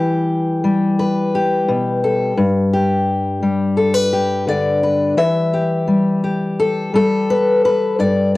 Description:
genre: folk, solo fingerstyle acoustic guitar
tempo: 86 BPM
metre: 4/4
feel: straight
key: unclear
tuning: A4 = 440 Hz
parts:
  - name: fingerpicked steel-string acoustic guitar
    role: solo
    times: 0.0-8.4 s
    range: G2 to E5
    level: -14 LUFS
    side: left 2 dB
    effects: cassette tape
room: moderate studio reverb, RT60 0.7 s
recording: home recording on cassette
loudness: -14 LUFS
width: side -18 dB against mid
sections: 0.0-5.2 A section; 5.2-8.4 B section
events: none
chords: 0.0 Em; 2.4 G; 5.2 Em

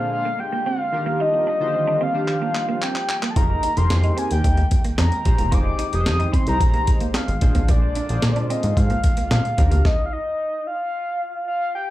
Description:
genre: early-eighties boogie funk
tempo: 111 BPM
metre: 4/4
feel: straight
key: F dorian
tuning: A4 = 440 Hz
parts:
  - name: soft octave-layered synth lead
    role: melody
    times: 0.0-11.9 s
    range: D5 to Eb6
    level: -24 LUFS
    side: left 1 dB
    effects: chorus, slapback echo, plate reverb
  - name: chorused polysynth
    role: accompaniment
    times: 0.0-9.8 s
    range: Bb2 to C5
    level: -28 LUFS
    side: equal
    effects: plate reverb, slapback echo
  - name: warm analog pad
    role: sustained chords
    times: 0.0-9.8 s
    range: D3 to G5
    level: -33 LUFS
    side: equal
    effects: chorus, plate reverb
  - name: semi-hollow electric guitar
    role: riff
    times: 0.3-9.8 s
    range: Bb3 to F4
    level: -30 LUFS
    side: right 5 dB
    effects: ensemble chorus, slapback echo
  - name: breakbeat sampler-style drum kit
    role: drums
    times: 2.3-10.0 s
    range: handclaps, hi-hat, kick drum, snare drum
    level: -20 LUFS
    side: equal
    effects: none
  - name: plucky analog bass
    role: bass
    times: 3.4-9.8 s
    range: E1 to Bb2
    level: -20 LUFS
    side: equal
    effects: none
room: little or no reverb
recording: live gig heard through the venue's PA, club ambience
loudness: -18 LUFS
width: side -15 dB against mid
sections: 0.0-11.9 A section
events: drum fill 2.3-3.4; stop 9.8-11.9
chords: 0.0 Bb7; 0.9 Ebmaj9; 3.4 Fm11; 7.4 Bb7; 9.6 Ebmaj9

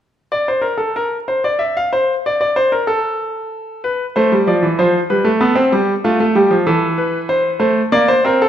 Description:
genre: classical, baroque-style two-part invention for grand piano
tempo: 63 BPM (dotted quarters)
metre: 6/8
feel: straight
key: F major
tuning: A4 = 441 Hz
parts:
  - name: clear concert grand piano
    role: solo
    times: 0.3-8.5 s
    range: E3 to F5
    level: -14 LUFS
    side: equal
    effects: none
room: moderate recital hall reverb, RT60 1.3 s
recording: none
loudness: -14 LUFS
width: side -10 dB against mid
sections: 0.0-8.5 A section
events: none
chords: 0.0 N.C.; 3.8 C; 4.8 Fadd9; 6.7 C/E; 7.6 Amadd11

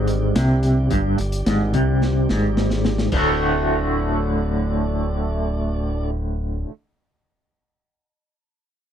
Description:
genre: psychedelic rock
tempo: 108 BPM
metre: 4/4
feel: straight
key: unclear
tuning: A4 = 439 Hz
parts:
  - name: mellow tonewheel organ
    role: sustained chords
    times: 0.0-6.1 s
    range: D3 to D5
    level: -31 LUFS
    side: right 4 dB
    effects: slow rotary speaker
  - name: twangy electric guitar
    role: riff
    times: 0.0-6.7 s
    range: D2 to F#4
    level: -20 LUFS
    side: equal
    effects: tremolo, double-tracked left and right
  - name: growling fingered electric bass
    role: bass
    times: 0.0-6.6 s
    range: D1 to C2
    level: -24 LUFS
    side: equal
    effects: overdrive
  - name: crunchy breakbeat drum kit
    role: drums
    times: 0.1-3.3 s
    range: crash cymbal, hi-hat, kick drum, snare drum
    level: -25 LUFS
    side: equal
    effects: none
room: little or no reverb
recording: dry, close 1970s-style studio recording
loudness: -18 LUFS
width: side -9 dB against mid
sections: 0.0-3.1 A section; 3.1-5.4 B section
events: drum fill 2.0-3.1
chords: 0.0 G5; 3.1 D

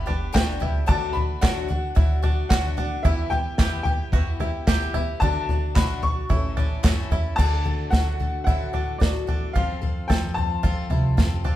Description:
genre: indie folk with a building arrangement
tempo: 111 BPM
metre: 4/4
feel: straight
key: D major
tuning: A4 = 442 Hz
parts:
  - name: warm upright piano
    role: melody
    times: 0.0-11.4 s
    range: D5 to C#6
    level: -30 LUFS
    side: left 2 dB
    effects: slapback echo
  - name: felt-muted upright piano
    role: accompaniment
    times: 0.0-7.4 s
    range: G1 to E5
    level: -38 LUFS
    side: right 2 dB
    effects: none
  - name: picked twelve-string acoustic guitar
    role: accompaniment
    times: 0.0-11.6 s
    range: G2 to A4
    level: -33 LUFS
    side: left 6 dB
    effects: none
  - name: bluegrass banjo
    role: arpeggios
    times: 0.0-11.6 s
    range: D4 to A4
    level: -33 LUFS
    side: right 4 dB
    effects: none
  - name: upright bass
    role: bass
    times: 0.0-11.6 s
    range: G1 to F#2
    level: -28 LUFS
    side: equal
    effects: none
  - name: unplugged drum kit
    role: drums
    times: 0.1-11.6 s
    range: crash cymbal, kick drum, snare drum, toms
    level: -22 LUFS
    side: equal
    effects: none
  - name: group handclap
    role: percussion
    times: 0.4-7.0 s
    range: none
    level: -34 LUFS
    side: right 3 dB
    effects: none
  - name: fingerpicked steel-string acoustic guitar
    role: accompaniment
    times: 7.4-11.6 s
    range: D2 to A4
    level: -34 LUFS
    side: left 2 dB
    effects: none
room: moderate stone room reverb, RT60 0.9 s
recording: band playing live in one room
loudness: -20 LUFS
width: side -13 dB against mid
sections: 0.0-7.4 A section; 7.4-11.6 B section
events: none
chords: 0.0 G; 0.9 D; 3.1 Em; 5.2 D; 6.3 A; 7.4 D; 9.6 F

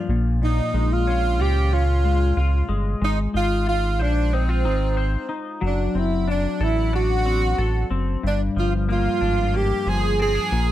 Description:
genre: indie pop, bedroom pop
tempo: 92 BPM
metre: 4/4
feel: straight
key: unclear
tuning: A4 = 439 Hz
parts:
  - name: clear tenor saxophone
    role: melody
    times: 0.0-10.7 s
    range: C4 to Ab4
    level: -24 LUFS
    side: right 2 dB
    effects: analog chorus, slapback echo
  - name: semi-hollow electric guitar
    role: accompaniment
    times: 0.0-10.7 s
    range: G2 to C5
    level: -26 LUFS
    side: left 4 dB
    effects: analog chorus, vibrato effect
  - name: round analog bass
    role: bass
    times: 0.1-10.7 s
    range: F#1 to Db2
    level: -22 LUFS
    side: equal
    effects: none
room: small room ambience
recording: dry, close 1970s-style studio recording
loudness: -19 LUFS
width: side -13 dB against mid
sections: 0.0-10.7 A section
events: none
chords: 0.1 Bbm7; 3.0 Ab6; 5.6 D7/F#; 8.2 Gm7

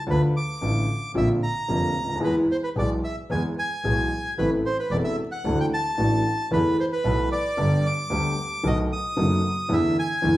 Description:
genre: tango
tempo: 112 BPM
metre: 4/4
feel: rubato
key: unclear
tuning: A4 = 439 Hz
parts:
  - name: bandoneon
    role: melody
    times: 0.0-10.4 s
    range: B4 to D#6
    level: -27 LUFS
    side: right 1 dB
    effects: none
  - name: warm upright piano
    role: accompaniment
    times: 0.1-10.4 s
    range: E1 to A4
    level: -24 LUFS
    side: equal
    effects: none
  - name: clear double bass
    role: bass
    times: 0.1-10.4 s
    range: E1 to E2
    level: -27 LUFS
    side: equal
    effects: none
room: wet large studio reverb, RT60 1.0 s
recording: band playing live in one room, vinyl crackle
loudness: -21 LUFS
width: side -15 dB against mid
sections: 0.0-10.4 A section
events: none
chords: 0.1 Dm; 1.2 Bbadd9; 2.2 E; 4.4 Am; 5.4 Dadd9; 6.5 Esus4; 7.6 G; 8.6 B7; 9.7 E7sus4

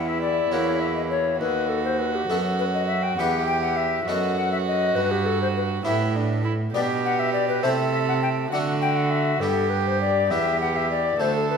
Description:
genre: classical, baroque-style sonata movement with continuo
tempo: 67 BPM (dotted quarters)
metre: 6/8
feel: straight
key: E minor, G major from 6.7 s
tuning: A4 = 440 Hz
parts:
  - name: mellow tenor recorder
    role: melody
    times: 0.0-11.6 s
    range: G4 to G5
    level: -24 LUFS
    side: left 7 dB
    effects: none
  - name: warm violin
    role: second line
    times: 0.0-11.6 s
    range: D4 to A4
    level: -27 LUFS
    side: right 7 dB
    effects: none
  - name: harpsichord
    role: accompaniment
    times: 0.0-11.6 s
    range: D2 to B4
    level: -29 LUFS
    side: equal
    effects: none
  - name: rich cello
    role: bass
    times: 0.0-11.6 s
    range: D2 to D3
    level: -27 LUFS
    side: right 2 dB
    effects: none
room: moderate recital hall reverb, RT60 1.5 s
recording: minimal, uncompressed stereo recording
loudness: -21 LUFS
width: side -6 dB against mid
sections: 0.0-11.6 A section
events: none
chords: 0.0 Em; 0.5 F#7/E; 1.4 B7/D#; 3.2 Em; 4.1 B5/F#; 5.0 Em/G; 6.7 G/B; 7.6 Am7/C; 8.5 D; 9.4 G; 10.3 Em

